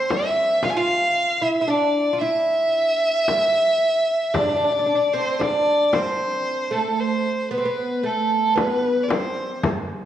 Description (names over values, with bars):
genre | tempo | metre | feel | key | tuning
Arabic maqam ensemble | 114 BPM (eighths) | 10/8 | straight | unclear | A4 = 440 Hz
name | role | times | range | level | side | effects
rich violin | melody | 0.0-9.6 s | A4 to G#5 | -20 LUFS | equal | none
oud | second line | 0.0-9.6 s | A3 to F4 | -25 LUFS | right 3 dB | none
frame drum | percussion | 0.1-9.9 s | none | -26 LUFS | left 3 dB | none
room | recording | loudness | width
wet recital hall reverb, RT60 1.7 s | worn, warbling old tape, cassette tape, warbly pitch drift, studio reverb | -18 LUFS | side -11 dB against mid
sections
0.0-10.1 A section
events
none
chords
none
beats
0.11 0.64 1.17 1.69 2.22 2.75 3.28 3.81 | 4.34 4.87 5.40 5.92 6.45 6.98 7.51 8.04 8.57 9.10 | 9.62